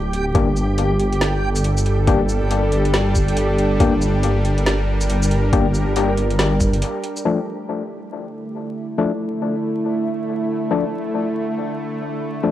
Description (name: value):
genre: deep dubstep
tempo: 139 BPM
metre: 4/4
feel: swing 60% on 16ths, half-time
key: unclear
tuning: A4 = 440 Hz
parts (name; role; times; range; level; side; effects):
- dark detuned saw bass; bass; 0.0-6.8 s; D1 to G1; -19 LUFS; equal; none
- backwards swelling texture; texture; 0.0-7.3 s; G4; -28 LUFS; right 2 dB; built-in reverb, cassette tape
- garage drum kit; drums; 0.1-7.2 s; hi-hat, shaker, snare drum; -25 LUFS; right 1 dB; overdrive, low-pass filter on hats, small room ambience, cassette tape, low-pass filter on cymbals, low-pass filter on perc, low-pass filter on snare
- bowed-like drone; sustained chords; 1.4-12.5 s; D3 to Bb4; -24 LUFS; right 1 dB; built-in reverb, cassette tape
- percussive organ stab; stabs; 0.3-12.5 s; F3 to G4; -23 LUFS; left 5 dB; chorus, cassette tape, dub echo
- electronic kick drum; drums; 0.3-6.7 s; none; -20 LUFS; equal; small room ambience, cassette tape
room: light reverb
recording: home recording on cassette, vinyl crackle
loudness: -17 LUFS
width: side -13 dB against mid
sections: 0.0-7.3 A section; 7.3-12.5 B section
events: break 6.8-7.3; filter sweep on synth drone 7.3-12.5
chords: 0.3 Gm; 7.3 Dm